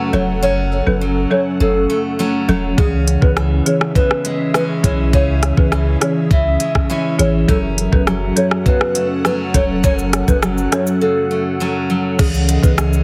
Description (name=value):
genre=dancehall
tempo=102 BPM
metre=4/4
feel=straight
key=C# minor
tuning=A4 = 440 Hz
part: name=ethereal airy pad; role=sustained chords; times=0.0-13.0 s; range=C#4 to F#5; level=-29 LUFS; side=equal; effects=ensemble chorus, built-in reverb, phaser, sidechain pumping
part: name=picked steel-string acoustic guitar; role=arpeggios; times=0.0-13.0 s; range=F#2 to C#4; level=-23 LUFS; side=equal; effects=digital delay
part: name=hollow clarinet-like synth lead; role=melody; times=0.1-12.7 s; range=G#4 to E5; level=-23 LUFS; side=equal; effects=chorus, digital delay
part: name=folk marimba with medium mallets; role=accompaniment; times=0.1-12.8 s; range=E3 to A4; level=-24 LUFS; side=equal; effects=sidechain pumping
part: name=punchy sub bass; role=bass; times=0.1-13.0 s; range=E1 to C#2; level=-21 LUFS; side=equal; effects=none
part: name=afro-pop drum kit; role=drums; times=2.8-13.0 s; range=crash cymbal, hi-hat, kick drum, rim click, shaker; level=-19 LUFS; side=equal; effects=none
room=light reverb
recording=heavily compressed radio sound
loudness=-16 LUFS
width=mono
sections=0.0-12.2 A section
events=drums muted 11.0-12.2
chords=0.0 F#m; 2.8 C#m; 7.5 F#m; 12.2 C#m